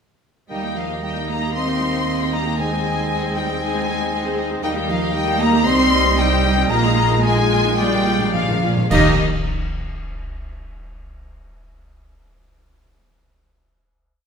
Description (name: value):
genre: classical, dramatic, fast romantic movement for symphony orchestra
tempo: 104-119 BPM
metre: 4/4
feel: rubato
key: Eb major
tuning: A4 = 439 Hz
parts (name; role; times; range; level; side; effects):
- warm symphonic violin section; melody; 0.5-9.2 s; Eb5 to C6; -23 LUFS; left 4 dB; none
- bright silver concert flute; second line; 0.5-9.2 s; Eb5 to C6; -27 LUFS; left 3 dB; none
- clear oboe; second line; 0.5-9.1 s; D5 to Eb5; -29 LUFS; right 1 dB; none
- mellow clarinet; second line; 0.5-9.1 s; Eb4 to G4; -29 LUFS; left 4 dB; none
- rich symphonic violin section; second line; 0.5-9.2 s; Eb4 to G5; -30 LUFS; left 4 dB; none
- rich symphonic viola section; accompaniment; 0.5-9.2 s; G3 to Ab4; -26 LUFS; right 2 dB; none
- warm bassoon; accompaniment; 0.5-9.1 s; G3 to C4; -28 LUFS; right 2 dB; none
- dark French horn section; sustained chords; 0.5-9.1 s; F3 to Eb4; -26 LUFS; left 1 dB; none
- rich studio double bass section; bass; 0.5-9.2 s; Bb1 to Eb2; -24 LUFS; right 3 dB; none
- rich symphonic cello section; bass; 0.5-9.2 s; Eb3 to C4; -26 LUFS; right 5 dB; none
- timpani; percussion; 0.5-3.3, 7.8-9.2 s; Bb2 to Eb3; -25 LUFS; equal; none
- cymbal swell, clash cymbals and concert bass drum; percussion; 4.6-10.0 s; none; -28 LUFS; equal; none
room: wet recital hall reverb, RT60 1.4 s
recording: minimal, uncompressed stereo recording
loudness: -16 LUFS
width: side -6 dB against mid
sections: 0.5-8.9 A section; 8.9-11.1 final chord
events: slowing down 3.6-8.9; timpani fill 7.8-8.9; band accent 8.9-9.5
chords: 0.5 Eb; 2.6 Ab/Eb; 4.6 Eb; 5.7 Cm; 6.7 Bb7sus4; 7.8 Bb7; 8.9 Eb